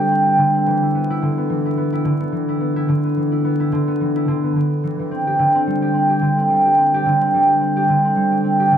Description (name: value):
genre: folktronica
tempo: 108 BPM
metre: 4/4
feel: swing 56% on 16ths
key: E minor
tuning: A4 = 441 Hz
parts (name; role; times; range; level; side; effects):
- concert harp; solo; 0.0-8.8 s; D3 to G4; -15 LUFS; equal; ping-pong delay
room: moderate echo chamber reverb, RT60 1.4 s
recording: vinyl crackle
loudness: -15 LUFS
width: side -9 dB against mid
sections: 0.0-8.8 A section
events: none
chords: 0.0 D7sus4; 0.7 E5; 5.1 D7sus4